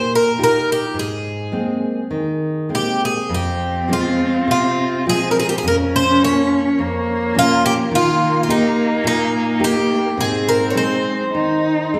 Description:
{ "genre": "fado-style ballad", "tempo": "104 BPM", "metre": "4/4", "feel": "rubato", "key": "Ab major, F minor from 3.3 s", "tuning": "A4 = 441 Hz", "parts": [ { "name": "picked twelve-string acoustic guitar", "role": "melody", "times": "0.0-11.9 s", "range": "Eb4 to Db5", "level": "-21 LUFS", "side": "equal", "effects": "none" }, { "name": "nylon-string guitar", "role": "accompaniment", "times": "0.0-12.0 s", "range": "F2 to G4", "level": "-23 LUFS", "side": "equal", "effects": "none" }, { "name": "rich cello", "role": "second line", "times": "3.3-12.0 s", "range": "Bb3 to Eb4", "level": "-23 LUFS", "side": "equal", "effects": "none" } ], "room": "wet recital hall reverb, RT60 1.4 s", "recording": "recorded in a church or concert hall", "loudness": "-18 LUFS", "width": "mono", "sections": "0.0-3.3 A section; 3.3-12.0 B section", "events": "none", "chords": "0.0 Ebadd9; 1.0 Abadd9; 3.3 Fm; 5.6 Bbm/F; 7.9 Eb; 10.2 Ab" }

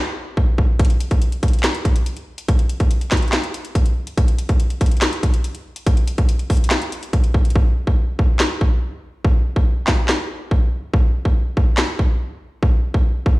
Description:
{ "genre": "hip hop", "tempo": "142 BPM", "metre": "4/4", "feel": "half-time", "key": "none", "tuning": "none", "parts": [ { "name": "trap drum kit", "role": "drums", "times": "0.4-13.4 s", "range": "handclaps, hi-hat, kick drum, snare drum", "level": "-16 LUFS", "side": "equal", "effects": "none" } ], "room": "digital ambience", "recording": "played on a big sound system in a bare room, stone room reverb", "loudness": "-16 LUFS", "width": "side -21 dB against mid", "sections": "0.0-13.4 A section", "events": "break 0.0-0.8; hi-hats muted 7.6-13.4", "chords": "none" }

